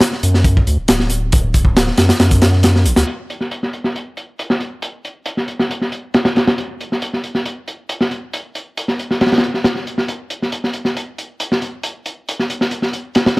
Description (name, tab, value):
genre	breakbeat, breaks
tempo	137 BPM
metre	4/4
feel	straight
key	unclear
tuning	A4 = 438 Hz
part	crunchy breakbeat drum kit	drums	0.0-13.4 s	hi-hat, kick drum, snare drum	-15 LUFS	equal	low-pass filter on kick, low-pass filter on hats, low-pass filter on snare, low-pass filter on room
part	saturated sub bass	bass	0.2-3.0 s	D1 to F#2	-15 LUFS	equal	none
room	little or no reverb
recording	none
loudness	-15 LUFS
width	side -24 dB against mid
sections	0.0-3.1 A section; 3.1-13.4 B section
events	none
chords	none